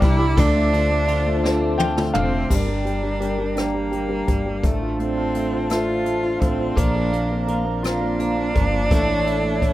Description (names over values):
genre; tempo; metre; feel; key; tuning
six-eight pop ballad; 56 BPM (dotted quarters); 6/8; straight; D minor; A4 = 440 Hz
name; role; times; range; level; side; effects
clear cello; melody; 0.0-9.7 s; A3 to F4; -25 LUFS; right 2 dB; none
clear grand piano; accompaniment; 0.0-9.7 s; D3 to G5; -25 LUFS; left 1 dB; none
chorused pulse-width pad; sustained chords; 0.0-9.7 s; D4 to D6; -26 LUFS; equal; none
twelve-string electric guitar; arpeggios; 0.0-2.6, 6.8-9.7 s; E3 to G4; -30 LUFS; right 3 dB; digital delay
upright bass; bass; 0.0-9.7 s; F1 to D2; -25 LUFS; equal; none
jazz brush drum kit; drums; 0.0-9.7 s; crash cymbal, hi-hat, kick drum, ride cymbal, rim click, snare drum, toms; -23 LUFS; equal; none
room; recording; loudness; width
little or no reverb; rough home demo mix; -18 LUFS; side -15 dB against mid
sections
0.0-2.5 A section; 2.5-9.7 B section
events
drum fill 1.4-2.5; grand piano fill 1.4-2.5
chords
0.4 Dm7; 2.5 Gm; 4.6 Dm7/A; 6.8 Bbadd9; 8.9 A